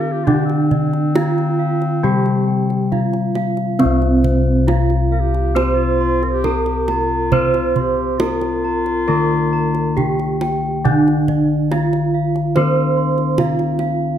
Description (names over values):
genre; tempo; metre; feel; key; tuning
Javanese gamelan; 68 BPM; 4/4; straight; C slendro; A4 = 435 Hz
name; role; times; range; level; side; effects
gamelan-type bronze metallophone; melody; 0.0-14.2 s; C4 to C5; -21 LUFS; right 5 dB; none
mellow clarinet; second line; 0.0-10.7 s; C4 to Bb4-24c; -24 LUFS; left 4 dB; none
gamelan-type bronze metallophone; accompaniment; 0.0-14.2 s; C3 to C4; -21 LUFS; left 4 dB; none
gamelan-type bronze metallophone; arpeggios; 0.0-14.2 s; C5 to C6; -25 LUFS; right 4 dB; none
gamelan-type bossed gongs; bass; 0.0-14.2 s; C2 to C5; -20 LUFS; left 2 dB; none
kendang; percussion; 0.3-14.0 s; none; -23 LUFS; right 4 dB; none
room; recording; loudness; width
moderate recital hall reverb, RT60 1.4 s; none; -15 LUFS; side -10 dB against mid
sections
0.0-3.8 A section; 3.8-14.2 A section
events
none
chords
none